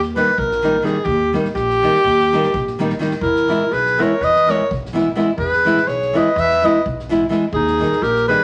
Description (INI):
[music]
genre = balkan folk, Balkan wedding band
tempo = 250 BPM (eighths)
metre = 9/8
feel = straight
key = unclear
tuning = A4 = 440 Hz
[part]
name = upright bass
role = bass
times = 0.0-8.3 s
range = A#1 to E2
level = -29 LUFS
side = equal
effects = none
[part]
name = soft-mallet drum kit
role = percussion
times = 0.0-8.4 s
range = kick drum, snare drum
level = -34 LUFS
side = equal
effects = none
[part]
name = clear alto saxophone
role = melody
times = 0.2-8.4 s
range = G4 to E5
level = -19 LUFS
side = equal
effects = none
[part]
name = nylon-string guitar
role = accompaniment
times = 0.2-8.4 s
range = D#3 to E4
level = -22 LUFS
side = equal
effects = none
[part]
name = mellow clarinet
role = second line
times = 3.2-8.4 s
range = D#4 to B4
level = -26 LUFS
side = equal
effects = none
[sound]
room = wet studio reverb, RT60 0.7 s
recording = nothing above 10.5 kHz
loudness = -17 LUFS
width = mono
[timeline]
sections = 0.0-8.4 A section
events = none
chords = 0.0 D#; 3.2 E; 7.5 D#